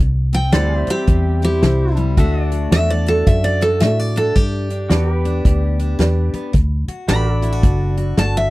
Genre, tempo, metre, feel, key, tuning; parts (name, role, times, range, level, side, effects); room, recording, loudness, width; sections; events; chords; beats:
honky-tonk and classic country; 110 BPM; 4/4; swing 62% on 8ths; A4 = 439 Hz
picked steel-string acoustic guitar; accompaniment; 0.0-8.5 s; G2 to F#4; -25 LUFS; left 4 dB
vintage muted fingered electric bass; bass; 0.0-8.5 s; F#1 to A2; -17 LUFS; equal
picked steel-string acoustic guitar; melody; 0.3-8.5 s; G4 to B5; -20 LUFS; right 1 dB
natural country drum kit; drums; 0.3-8.3 s; hi-hat, kick drum, snare drum; -16 LUFS; equal
dark upright piano; accompaniment; 0.5-8.5 s; E4 to D5; -28 LUFS; right 4 dB
pedal steel guitar; sustained chords; 0.5-8.5 s; F#4 to E5; -29 LUFS; right 2 dB; wide subtle chorus
little or no reverb; dry, close 1970s-style studio recording; -14 LUFS; side -19 dB against mid
0.0-8.5 A section
steel-string acoustic guitar solo 0.0-8.5
0.0 C; 2.2 D; 4.4 G; 6.5 D
0.53 1.08 1.62 | 2.17 2.71 3.26 3.81 | 4.35 4.90 5.45 5.99 | 6.54 7.08 7.63 8.18